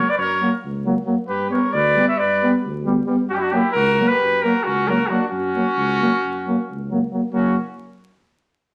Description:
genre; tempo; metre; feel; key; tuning
balkan folk; 267 BPM (eighths); 9/8; straight; F# phrygian dominant; A4 = 443 Hz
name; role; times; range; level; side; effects
warm cornet; melody; 0.0-7.6 s; F#4 to E5; -22 LUFS; equal; none
clear trumpet; second line; 0.0-7.6 s; C#4 to C#5; -28 LUFS; equal; none
clear trombone; accompaniment; 0.0-7.6 s; F#3 to G3; -30 LUFS; equal; none
dark euphonium; accompaniment; 0.0-7.6 s; A#3 to B3; -24 LUFS; equal; none
dark tuba; bass; 0.2-7.6 s; F#1 to G2; -30 LUFS; equal; none
room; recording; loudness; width
wet studio reverb, RT60 0.8 s; vinyl crackle; -20 LUFS; mono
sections
0.0-7.3 A section; 7.3-8.7 B section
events
none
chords
0.0 F#; 1.3 G; 3.3 F#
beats
0.16 0.39 0.61 0.83 1.06 | 1.28 1.50 1.73 1.95 2.17 2.40 2.62 2.84 3.07 | 3.29 3.52 3.74 3.96 4.19 4.41 4.64 4.86 5.08 | 5.31 5.54 5.76 5.99 6.21 6.44 6.66 6.89 7.11 | 7.34 7.57

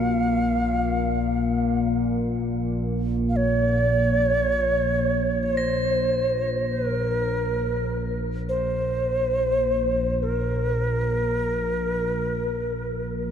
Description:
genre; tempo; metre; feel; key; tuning
world meditative, free-time meditation music; free time; none; none; Bb hirajoshi; A4 = 444 Hz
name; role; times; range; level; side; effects
Native American-style cedar flute; melody; 0.0-13.3 s; Bb4 to F5; -24 LUFS; right 1 dB; diffuse ambient delay
analog drone; drone; 0.0-13.3 s; Bb1 to Bb2; -25 LUFS; left 1 dB; chorus
crotales; texture; 0.0-13.3 s; Bb6 to Db7; -39 LUFS; right 3 dB; none
room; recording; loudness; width
wet huge ambient reverb, RT60 5.0 s; dark, warm production; -21 LUFS; side -8 dB against mid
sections
0.0-13.3 A section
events
none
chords
none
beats
free time

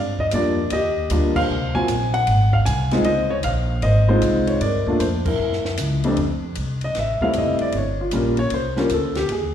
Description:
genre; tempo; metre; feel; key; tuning
jazz piano trio; 154 BPM; 4/4; swing 66% on 8ths; unclear; A4 = 440 Hz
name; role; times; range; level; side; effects
warm grand piano; melody; 0.0-9.5 s; F2 to Ab5; -20 LUFS; left 1 dB; slapback echo
upright bass; bass; 0.0-9.5 s; F1 to G2; -22 LUFS; equal; none
compact cocktail drum kit; drums; 0.2-9.4 s; crash cymbal, hi-hat, kick drum, ride cymbal, snare drum; -30 LUFS; left 1 dB; none
room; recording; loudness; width
light reverb; live gig heard through the venue's PA, recital hall reverb; -18 LUFS; side -9 dB against mid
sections
0.0-6.2 A section; 6.2-9.5 B section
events
band accent 1.3, 5.2; grand piano solo 6.2-9.5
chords
0.0 Ebmaj9; 1.5 Ab13; 3.1 Dbmaj9; 4.6 Gm7; 5.4 Gb7; 6.2 Fmaj9; 7.7 Gm11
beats
0.33 0.71 1.10 | 1.49 1.88 2.27 2.66 | 3.05 3.44 3.83 4.22 | 4.61 5.00 5.39 5.78 | 6.17 6.56 6.95 7.34 | 7.73 8.12 8.52 8.91 | 9.30

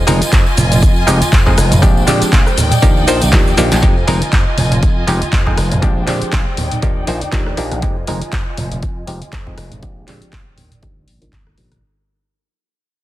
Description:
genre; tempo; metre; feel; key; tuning
filtered disco house; 120 BPM; 4/4; swing 56% on 16ths; F dorian; A4 = 440 Hz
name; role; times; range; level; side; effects
clear symphonic string section; sustained chords; 0.0-11.8 s; Eb3 to Ab5; -22 LUFS; equal; sidechain pumping, low-pass filter
slap bass with an envelope filter; bass; 0.0-11.8 s; F1 to Bb2; -18 LUFS; equal; sidechain pumping, low-pass filter
muted clav; accompaniment; 0.1-11.8 s; F3 to C5; -18 LUFS; equal; phaser, sidechain pumping, low-pass filter
punchy analog drum machine; drums; 0.1-11.8 s; handclaps, hi-hat, rim click, shaker, snare drum; -21 LUFS; left 1 dB; sidechain pumping on hats, sidechain pumping on perc
congas and tambourine; percussion; 0.1-11.8 s; none; -21 LUFS; right 2 dB; sidechain pumping on perc, low-pass filter on perc
electronic kick drum; drums; 0.3-11.4 s; none; -14 LUFS; equal; none
room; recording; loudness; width
light reverb, digital ambience; dense, heavily limited modern master, faint mains hum; -11 LUFS; side -15 dB against mid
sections
0.0-3.8 A section; 3.8-11.8 B section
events
drop 0.0-3.8; drum fill 3.3-3.8; fade-out 3.8-11.8; filter sweep 3.8-11.8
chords
0.0 Fm7; 1.8 Bb13; 2.6 Ebmaj7; 3.8 Fm7; 5.8 Bb13; 6.6 Ebmaj7; 7.8 Fm7; 9.8 Bb13; 10.6 Ebmaj7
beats
0.33 0.82 1.32 | 1.82 2.33 2.83 3.33 | 3.83 4.33 4.83 5.33 | 5.83 6.33 6.83 7.33 | 7.83 8.32 8.82 9.32 | 9.82 10.32 10.82 11.32

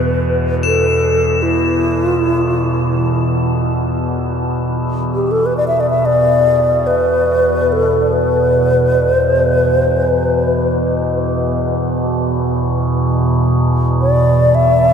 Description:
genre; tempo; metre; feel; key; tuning
world meditative, free-time meditation music; free time; none; none; unclear; A4 = 443 Hz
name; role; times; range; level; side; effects
breathy bright wooden-headed alto flute; melody; 0.0-14.9 s; E4 to E5; -15 LUFS; left 1 dB; tape echo
overtone-sweeping drone; drone; 0.0-14.9 s; E2 to B2; -16 LUFS; right 1 dB; chorus, built-in reverb
crotales; texture; 0.6-9.3 s; E7; -24 LUFS; left 7 dB; stereo widening
room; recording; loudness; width
wet huge ambient reverb, RT60 8.4 s; in a vast, echoing space; -12 LUFS; side -7 dB against mid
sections
0.0-14.9 A section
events
none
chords
none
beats
free time

